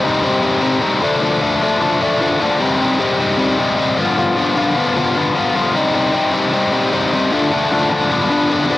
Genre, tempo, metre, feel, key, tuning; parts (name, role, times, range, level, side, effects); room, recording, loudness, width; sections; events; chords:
rock; 152 BPM; 4/4; straight; C dorian; A4 = 440 Hz
biting overdriven guitar; solo; 0.0-8.8 s; G2 to F4; -14 LUFS; left 2 dB; cassette tape
light reverb, digital ambience; home recording on cassette; -14 LUFS; side -16 dB against mid
0.0-8.8 A section
0.0 Cm; 1.0 Dm; 2.6 Cm; 4.0 G7; 5.8 Cm; 7.3 Dm; 8.1 G7